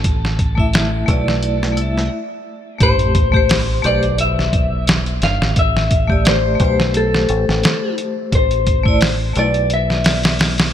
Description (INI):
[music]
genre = trip hop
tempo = 87 BPM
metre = 4/4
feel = swing 54% on 16ths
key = A minor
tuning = A4 = 439 Hz
[part]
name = electric slide guitar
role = melody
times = 0.0-10.4 s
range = A4 to F5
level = -21 LUFS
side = left 2 dB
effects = dub echo
[part]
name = deep dub fingered electric bass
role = bass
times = 0.0-10.7 s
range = G1 to C2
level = -19 LUFS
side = equal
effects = none
[part]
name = trip hop sampler-style drum kit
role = drums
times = 0.0-10.7 s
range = hi-hat, kick drum, snare drum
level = -17 LUFS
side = equal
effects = none
[part]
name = vibraphone with hard mallets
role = accompaniment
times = 0.6-9.5 s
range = A3 to E5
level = -21 LUFS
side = left 1 dB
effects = tremolo, tape echo
[part]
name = sub drop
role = sound effects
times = 2.9-5.6 s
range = none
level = -24 LUFS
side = equal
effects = none
[sound]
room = light reverb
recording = bright 1980s-style digital production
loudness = -14 LUFS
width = side -10 dB against mid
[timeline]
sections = 0.0-2.8 A section; 2.8-10.7 B section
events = break 2.1-2.8; impact 2.8-5.6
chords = 0.0 Dsus2; 2.8 Am7; 8.3 Dsus2 (rootless)